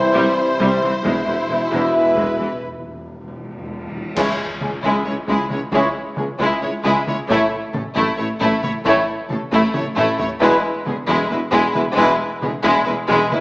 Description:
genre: cinematic, epic orchestral film score.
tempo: 269 BPM (eighths).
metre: 7/8.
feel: straight.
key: C# minor from 4.2 s.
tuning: A4 = 441 Hz.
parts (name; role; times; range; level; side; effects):
rich studio violin section; melody; 0.0-13.4 s; E4 to C#5; -24 LUFS; left 1 dB; none.
dark symphonic violin section; second line; 0.0-13.4 s; G#3 to E4; -22 LUFS; left 1 dB; none.
mellow French horn section; sustained chords; 0.0-12.1 s; G3 to E4; -24 LUFS; equal; none.
warm trombone section; sustained chords; 0.0-12.1 s; A2 to E3; -26 LUFS; equal; none.
mellow trumpet section; stabs; 0.0-12.1 s; B4 to E5; -22 LUFS; equal; none.
clear symphonic viola section; accompaniment; 0.1-13.4 s; E3 to A3; -25 LUFS; equal; none.
rich symphonic cello section; bass; 0.1-13.4 s; C2 to A2; -26 LUFS; equal; none.
dark tuba; bass; 0.2-13.4 s; E1 to C#2; -26 LUFS; equal; none.
rich symphonic double bass section; bass; 0.2-13.4 s; E1 to C#2; -30 LUFS; equal; none.
solo taiko drums; drums; 0.6-13.4 s; none; -31 LUFS; equal; none.
cymbal swell, clash cymbals and concert bass drum; percussion; 1.0-5.0 s; none; -32 LUFS; equal; none.
timpani; percussion; 1.0-4.1 s; E2; -34 LUFS; equal; none.
room: wet scoring stage reverb, RT60 1.6 s.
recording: small speaker sound.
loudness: -16 LUFS.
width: side -23 dB against mid.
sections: 0.0-4.2 A section; 4.2-13.4 B section.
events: timpani fill 1.0-4.2; break 2.6-4.2; band accent 4.2-4.6; drum fill 9.7-10.4.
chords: 0.0 C; 1.0 E; 4.2 C#m; 7.3 A5; 10.4 E.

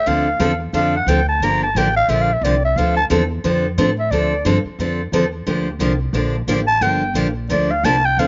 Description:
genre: acoustic string swing (jazz manouche).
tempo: 178 BPM.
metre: 4/4.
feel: swing 60% on 8ths.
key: unclear.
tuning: A4 = 436 Hz.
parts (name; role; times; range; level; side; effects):
growling clarinet; melody; 0.0-4.5, 6.7-8.3 s; D5 to Bb5; -20 LUFS; equal; slapback echo.
picked steel-string acoustic guitar; accompaniment; 0.1-8.3 s; D3 to A4; -22 LUFS; equal; slapback echo.
upright bass; bass; 0.1-8.3 s; G1 to A2; -24 LUFS; equal; none.
room: little or no reverb.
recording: recorded outdoors, with no room sound, nothing above 7.5 kHz.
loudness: -18 LUFS.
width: mono.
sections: 0.1-8.3 A section.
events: clarinet solo 0.0-8.3.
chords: 0.1 Dm7; 1.4 Gm7; 2.8 Dm7; 5.5 Gm7.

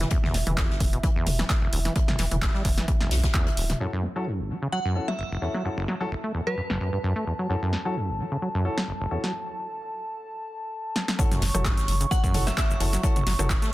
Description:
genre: acid house.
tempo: 130 BPM.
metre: 4/4.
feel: swing 54% on 16ths.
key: F# minor.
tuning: A4 = 440 Hz.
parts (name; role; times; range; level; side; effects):
dark analog pad; sustained chords; 0.0-13.7 s; E5 to C#6; -35 LUFS; right 1 dB; chorus, sidechain pumping.
acid bass, saw; riff; 0.0-13.7 s; E1 to A3; -29 LUFS; equal; tube saturation.
warm sub bass; bass; 0.0-3.7, 11.4-13.5 s; D1 to B1; -26 LUFS; equal; tube saturation, sidechain pumping.
punchy analog drum machine; drums; 0.0-13.7 s; crash cymbal, handclaps, hi-hat, rim click, shaker, snare drum, toms; -30 LUFS; equal; overdrive, low-pass filter on hats, low-pass filter on snare, low-pass filter on toms, low-pass filter on cymbals, low-pass filter on perc.
soft-mallet drum kit; drums; 0.0-3.8, 11.2-13.7 s; hi-hat, snare drum; -39 LUFS; left 3 dB; high-pass filter on hats, high-pass filter on snare, high-pass filter on room.
electronic kick drum; drums; 0.1-3.4, 11.2-13.6 s; none; -24 LUFS; equal; overdrive.
warm grand piano; stabs; 3.8-13.5 s; C#4 to A4; -34 LUFS; left 2 dB; dub echo.
glassy synth bell; melody; 4.7-6.9, 12.1-12.7 s; B4 to F#5; -33 LUFS; right 1 dB; chorus, phaser, dub echo.
room: light reverb.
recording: dense, heavily limited modern master.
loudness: -23 LUFS.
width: side -17 dB against mid.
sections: 0.0-3.8 A section; 3.8-11.2 B section; 11.2-13.7 C section.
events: filter sweep on acid bass 0.0-3.8; filter sweep on drum 3.8-11.2; filter sweep on analog synth pad 3.8-11.2; break 9.3-11.2; drum fill 11.0; drop 11.2-13.7.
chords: 0.0 N.C.; 3.8 F#m7.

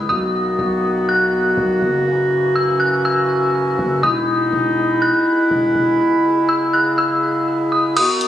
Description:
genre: hip hop, atmospheric cloud-rap.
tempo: 122 BPM.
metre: 4/4.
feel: half-time.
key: C# dorian.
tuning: A4 = 440 Hz.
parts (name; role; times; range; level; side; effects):
dark detuned synth bell; melody; 0.0-8.3 s; D#6 to F#6; -20 LUFS; left 1 dB; chorus, low-pass filter, ping-pong delay.
warm woodwind section; sustained chords; 0.0-8.3 s; C#3 to F#4; -17 LUFS; equal; none.
long sustained 808-style bass; bass; 0.0-6.0 s; E1 to B1; -25 LUFS; equal; none.
smooth R&B drum kit; drums; 8.0-8.3 s; crash cymbal, hi-hat; -23 LUFS; equal; none.
room: light reverb.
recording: recorded on a phone in the room, studio reverb, compression.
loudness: -15 LUFS.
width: side -11 dB against mid.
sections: 0.1-8.0 A section.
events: kick muted 8.0-8.3.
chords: 0.1 Bmaj7; 2.1 F#7; 4.0 Emaj7; 6.0 C#m7.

